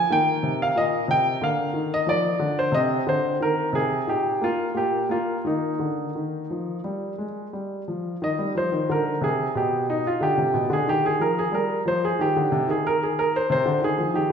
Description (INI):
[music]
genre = classical, baroque-style suite movement for grand piano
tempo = 91 BPM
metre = 4/4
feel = rubato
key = Eb major, C minor from 8.2 s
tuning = A4 = 440 Hz
[part]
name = clear baby grand piano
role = solo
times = 0.0-14.3 s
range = Bb2 to Ab5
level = -21 LUFS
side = equal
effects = none
[sound]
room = wet recital hall reverb, RT60 1.6 s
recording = recorded in a church or concert hall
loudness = -21 LUFS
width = side -7 dB against mid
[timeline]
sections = 0.0-8.2 A section; 8.2-14.3 A section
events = none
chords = 0.1 Eb5; 1.4 Bb/D; 2.7 Cm9; 4.1 Eb/Bb; 4.7 N.C.; 5.4 Eb; 8.2 Cm/Eb; 9.6 Baug; 10.9 Cm/Eb; 13.5 Fm13/C